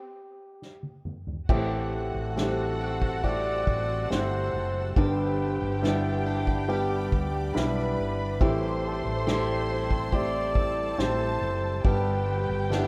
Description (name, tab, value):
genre	pop ballad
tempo	70 BPM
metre	4/4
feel	straight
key	unclear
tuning	A4 = 440 Hz
part	breathy flugelhorn	melody	0.0-12.9 s	G4 to D5	-34 LUFS	equal	none
part	soft-mallet drum kit	drums	0.6-12.9 s	crash cymbal, kick drum, ride cymbal, snare drum, toms	-31 LUFS	equal	none
part	warm studio violin section	second line	1.5-12.9 s	F#4 to C6	-38 LUFS	equal	none
part	warm grand piano	accompaniment	1.5-12.9 s	G2 to G4	-33 LUFS	equal	none
part	shimmering ambient pad	sustained chords	2.6-12.9 s	G3 to E6	-43 LUFS	equal	chorus, built-in reverb
part	picked steel-string acoustic guitar	arpeggios	1.5-12.9 s	G2 to G4	-39 LUFS	equal	none
part	mellow fretless electric bass	bass	1.5-12.9 s	F#1 to D2	-34 LUFS	equal	ensemble chorus
room	little or no reverb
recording	rough home demo mix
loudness	-27 LUFS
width	mono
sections	0.0-1.5 A section; 1.5-12.9 B section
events	stop 0.0-1.5; drum fill 0.6-1.5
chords	0.0 N.C.; 1.5 Am7; 5.0 G; 8.4 Am7; 11.8 G